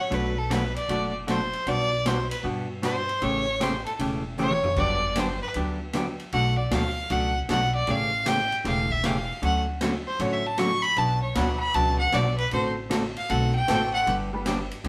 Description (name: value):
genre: country, western swing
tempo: 155 BPM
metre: 4/4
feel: swing 66% on 8ths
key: D major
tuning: A4 = 438 Hz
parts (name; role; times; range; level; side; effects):
- bright fiddle; melody; 0.0-14.1 s; A4 to C#6; -29 LUFS; equal; none
- hollow-body jazz guitar; accompaniment; 0.1-14.9 s; B2 to A4; -31 LUFS; equal; none
- upright bass; bass; 0.1-14.9 s; E1 to G2; -32 LUFS; equal; none
- swinging big-band drum kit; drums; 0.1-14.9 s; crash cymbal, hi-hat, kick drum, ride cymbal, snare drum, toms; -36 LUFS; equal; none
- honky-tonk upright piano; accompaniment; 11.4-14.5 s; F#3 to B4; -36 LUFS; equal; none
room: wet large studio reverb, RT60 0.8 s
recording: band playing live in one room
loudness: -25 LUFS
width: mono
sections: 0.0-14.9 A section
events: fiddle solo 0.0-14.9; drum fill 4.4-4.8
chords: 0.1 Bm7; 1.7 Gmaj7/B; 3.2 A7; 4.8 Gmaj7; 6.3 Bm7; 7.9 A7; 9.4 Dmaj7; 11.0 Bm; 12.5 D7/A; 14.1 G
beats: | 0.11 0.50 0.89 1.28 | 1.67 2.05 2.44 2.83 | 3.22 3.61 4.00 4.38 | 4.77 5.16 5.55 5.94 | 6.33 6.71 7.10 7.49 | 7.88 8.26 8.65 9.04 | 9.43 9.81 10.20 10.59 | 10.97 11.36 11.75 12.13 | 12.52 12.91 13.29 13.68 | 14.07 14.46 14.84